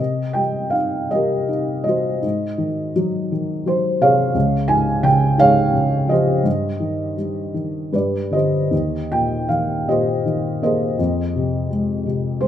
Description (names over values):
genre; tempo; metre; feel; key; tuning
classical, lyrical solo piano; 76-89 BPM; 3/4; rubato; C minor; A4 = 440 Hz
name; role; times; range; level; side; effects
felt-muted upright piano; solo; 0.0-12.5 s; Db2 to Ab5; -17 LUFS; equal; none
room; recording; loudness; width
moderate recital hall reverb, RT60 1.3 s; none; -17 LUFS; side -10 dB against mid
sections
0.0-12.5 A section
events
none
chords
0.0 Cm7; 2.2 Ab7; 4.4 Db; 6.5 Cm/G; 7.9 G; 8.7 Eb6; 11.0 Fm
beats
0.75 1.50 | 2.24 2.97 3.67 | 4.35 5.04 5.74 | 6.46 7.18 7.93 | 8.72 9.49 10.25 | 10.99 11.72 12.42